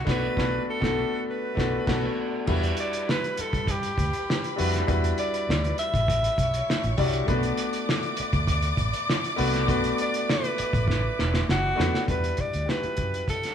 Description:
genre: lush 1970s-style soul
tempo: 100 BPM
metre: 4/4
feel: straight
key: unclear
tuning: A4 = 443 Hz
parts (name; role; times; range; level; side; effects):
- bright alto saxophone; melody; 0.0-13.5 s; F#4 to E5; -29 LUFS; right 1 dB; none
- warm concert grand piano; accompaniment; 0.0-13.5 s; G3 to D5; -29 LUFS; left 3 dB; none
- vintage muted fingered electric bass; bass; 0.0-13.2 s; E1 to G2; -28 LUFS; right 1 dB; none
- cloth-damped thuddy drum kit; drums; 0.1-13.5 s; crash cymbal, hi-hat, kick drum, snare drum; -28 LUFS; right 1 dB; none
- warm studio violin section; second line; 2.5-12.0 s; B4 to D6; -33 LUFS; left 1 dB; none
room: moderate studio reverb, RT60 0.8 s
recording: band playing live in one room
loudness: -23 LUFS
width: side -8 dB against mid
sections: 0.0-2.5 A section; 2.5-12.1 B section; 12.1-13.5 A section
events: band accent 0.1-2.5; drum fill 10.9-12.1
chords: 0.0 Bm7; 2.5 Em9; 7.3 Bm7; 12.1 Em9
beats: | 0.07 0.67 1.27 1.88 | 2.48 3.08 3.68 4.28 | 4.88 5.48 6.08 6.68 | 7.28 7.88 8.48 9.08 | 9.68 10.28 10.88 11.48 | 12.08 12.68 13.28

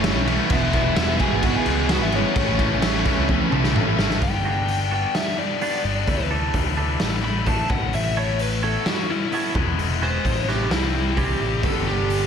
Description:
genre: quiet-loud alternative rock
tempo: 129 BPM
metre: 4/4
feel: straight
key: A major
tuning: A4 = 440 Hz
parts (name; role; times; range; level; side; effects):
- fuzz lead guitar; melody; 0.0-12.3 s; C#4 to B5; -27 LUFS; left 1 dB; distortion, slapback echo
- ensemble organ-string; sustained chords; 0.0-4.2 s; E3 to A4; -34 LUFS; right 2 dB; none
- fuzz guitar; riff; 0.0-4.2, 11.6-12.3 s; E2 to A3; -27 LUFS; right 11 dB; distortion, slapback echo
- tight distorted guitar; riff; 0.0-12.3 s; G2 to G4; -26 LUFS; left 11 dB; distortion, slapback echo
- tight distorted guitar; riff; 0.0-4.2 s; E2 to A3; -29 LUFS; equal; distortion, slapback echo
- overdriven picked electric bass; bass; 0.0-12.3 s; E1 to D2; -25 LUFS; equal; none
- raw garage drum kit; drums; 0.0-12.2 s; crash cymbal, hi-hat, kick drum, snare drum, toms; -24 LUFS; equal; none
- twangy electric guitar; arpeggios; 4.2-11.4 s; E3 to C#5; -30 LUFS; right 6 dB; slapback echo
room: moderate scoring stage reverb, RT60 2.0 s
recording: big arena sound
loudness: -19 LUFS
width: side -7 dB against mid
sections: 0.0-4.2 A section; 4.2-12.3 B section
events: drum fill 3.3-4.2; half time 4.2-12.3; lead electric guitar solo 4.2-12.3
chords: 0.0 A6; 0.5 E; 2.4 A; 4.2 Gmaj7; 6.1 Dsus2; 7.7 Aadd9; 9.6 Eadd9; 10.7 C; 11.6 G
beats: 0.04 | 0.51 0.97 1.43 1.90 | 2.36 2.83 3.29 3.75 | 4.22 4.68 5.15 5.61 | 6.08 6.54 7.00 7.47 | 7.93 8.40 8.86 9.32 | 9.79 10.25 10.71 11.18 | 11.64 12.10

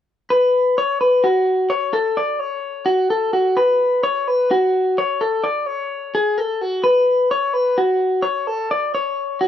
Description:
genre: rock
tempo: 257 BPM (eighths)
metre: 7/8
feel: straight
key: unclear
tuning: A4 = 444 Hz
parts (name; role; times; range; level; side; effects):
- electric guitar through a small old amp; solo; 0.3-9.5 s; F#4 to D5; -16 LUFS; left 1 dB; none
room: digital ambience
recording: rough home demo mix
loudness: -16 LUFS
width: side -10 dB against mid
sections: 0.3-9.5 A section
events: none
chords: none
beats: | 0.31 0.54 0.77 1.01 1.24 1.47 1.71 | 1.94 2.17 2.41 2.64 2.88 3.11 3.34 | 3.58 3.81 4.04 4.28 4.51 4.74 4.98 | 5.21 5.44 5.68 5.91 6.14 6.38 6.61 | 6.84 7.07 7.31 7.54 7.77 8.01 8.24 | 8.47 8.70 8.94 9.17 9.40

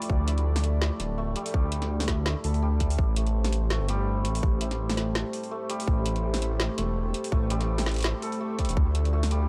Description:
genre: half-time drum and bass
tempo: 166 BPM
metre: 4/4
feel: swing 56% on 16ths, half-time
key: A minor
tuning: A4 = 440 Hz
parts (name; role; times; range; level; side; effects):
- dark analog pad; sustained chords; 0.0-9.5 s; F3 to D5; -37 LUFS; equal; chorus, vintage 12-bit sampler grit, sidechain pumping
- santur; arpeggios; 0.0-9.5 s; G3 to A4; -38 LUFS; equal; analog delay
- drum and bass drum kit; drums; 0.0-9.4 s; hi-hat, snare drum; -35 LUFS; equal; none
- dark detuned saw bass; bass; 0.1-9.5 s; D1 to D2; -29 LUFS; equal; none
- electronic kick drum; drums; 0.1-8.8 s; none; -27 LUFS; equal; none
- metallic inharmonic drone; texture; 5.4-9.5 s; A3; -42 LUFS; equal; chorus, built-in reverb
room: digital ambience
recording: dry, gritty hardware recording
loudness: -27 LUFS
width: mono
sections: 0.0-9.5 A section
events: none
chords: 0.0 Dm; 3.0 Am7; 8.8 Dm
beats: | 0.09 0.46 0.82 1.18 | 1.54 1.90 2.26 2.62 | 2.99 3.35 3.71 4.07 | 4.43 4.79 5.16 5.52 | 5.88 6.24 6.60 6.96 | 7.32 7.68 8.05 8.41 | 8.77 9.13

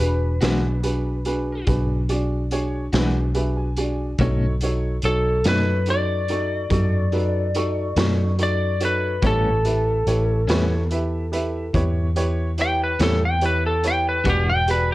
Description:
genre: slow blues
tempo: 48 BPM (dotted quarters)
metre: 12/8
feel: straight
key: unclear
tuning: A4 = 440 Hz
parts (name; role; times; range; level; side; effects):
- lightly driven lead guitar; melody; 0.0-14.9 s; G4 to G5; -24 LUFS; left 1 dB; none
- clear upright piano; accompaniment; 0.0-14.9 s; D4 to C#6; -26 LUFS; right 2 dB; none
- vintage muted fingered electric bass; bass; 0.0-14.9 s; E1 to F#2; -22 LUFS; equal; none
- clean electric guitar; accompaniment; 0.4-14.5 s; A2 to F#4; -26 LUFS; left 2 dB; tremolo
- raw garage drum kit; drums; 0.4-14.9 s; hi-hat, kick drum, snare drum; -26 LUFS; equal; none
room: little or no reverb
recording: worn, warbling old tape, cassette tape, warbly pitch drift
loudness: -19 LUFS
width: side -17 dB against mid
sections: 0.0-14.9 A section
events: lead electric guitar solo 0.0-14.9; upright piano fill 2.9-4.2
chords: 0.0 E9; 4.2 B9; 9.2 A9; 14.3 E9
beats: 0.42 1.68 2.93 | 4.19 5.45 6.71 7.97 | 9.23 10.48 11.74 13.00 | 14.26

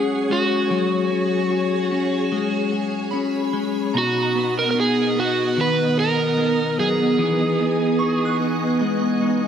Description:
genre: dream pop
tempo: 74 BPM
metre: 4/4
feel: straight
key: F# major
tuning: A4 = 439 Hz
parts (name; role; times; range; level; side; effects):
- overdriven slide guitar; melody; 0.0-8.4 s; F#4 to B4; -22 LUFS; right 2 dB; tape echo
- string machine, violas; sustained chords; 0.0-9.5 s; B3 to D#6; -24 LUFS; right 2 dB; ensemble chorus
- clean electric guitar; arpeggios; 0.0-9.5 s; B2 to F#4; -23 LUFS; left 4 dB; analog chorus, tape echo
- shimmering bell with halo; texture; 0.0-9.5 s; F#5 to B6; -33 LUFS; right 3 dB; ensemble chorus, phaser, tape echo
room: wet echo chamber reverb, RT60 2.4 s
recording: echo-heavy mix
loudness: -18 LUFS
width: side -8 dB against mid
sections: 0.0-9.5 A section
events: none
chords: 0.0 F#sus2; 3.9 B; 7.2 Emaj7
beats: | 0.69 1.50 2.31 3.12 | 3.94 4.75 5.56 6.37 | 7.18 7.99 8.80

